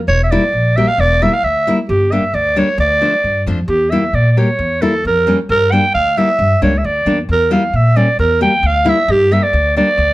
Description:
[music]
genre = klezmer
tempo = 133 BPM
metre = 2/4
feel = straight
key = unclear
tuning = A4 = 440 Hz
[part]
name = upright bass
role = bass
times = 0.0-10.1 s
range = E1 to Bb2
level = -17 LUFS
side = equal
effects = none
[part]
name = growling clarinet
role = melody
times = 0.1-10.1 s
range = G4 to G5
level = -14 LUFS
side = right 1 dB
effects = none
[part]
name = nylon-string guitar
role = accompaniment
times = 0.3-9.9 s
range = F3 to G4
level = -17 LUFS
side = left 2 dB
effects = none
[sound]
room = moderate studio reverb, RT60 0.5 s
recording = none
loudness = -11 LUFS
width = side -17 dB against mid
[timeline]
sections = 0.0-3.7 A section; 3.7-10.1 A section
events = none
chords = 0.1 Edim; 1.9 Gm; 2.8 Dm; 3.7 Edim; 5.5 Gm; 7.3 Edim; 9.1 Gm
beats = | 0.08 0.53 | 0.98 1.44 | 1.89 2.34 | 2.79 3.24 | 3.69 4.14 | 4.59 5.04 | 5.49 5.94 | 6.39 6.84 | 7.29 7.74 | 8.19 8.64 | 9.09 9.54 | 9.99

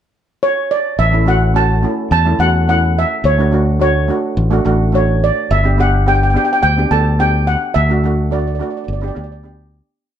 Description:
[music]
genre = calypso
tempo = 106 BPM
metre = 4/4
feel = straight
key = D major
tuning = A4 = 440 Hz
[part]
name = steel pan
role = melody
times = 0.4-9.4 s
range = C#5 to A5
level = -17 LUFS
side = right 1 dB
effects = plate reverb
[part]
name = fingered electric bass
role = bass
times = 1.0-9.8 s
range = G1 to E2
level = -15 LUFS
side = left 1 dB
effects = none
[part]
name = steel pan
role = accompaniment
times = 1.1-9.9 s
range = A3 to A4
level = -19 LUFS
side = right 2 dB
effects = none
[sound]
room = moderate studio reverb, RT60 0.7 s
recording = none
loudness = -12 LUFS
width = side -9 dB against mid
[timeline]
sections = 0.0-1.0 pickup bar; 1.0-10.0 verse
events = fade-out 7.8-10.0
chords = 0.0 N.C.; 1.0 A6; 3.2 Dmaj7; 5.5 G; 7.8 D; 8.9 G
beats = 0.42 | 0.98 1.55 2.11 2.68 | 3.24 3.81 4.37 4.94 | 5.50 6.07 6.63 7.19 | 7.76 8.32 8.88 9.44

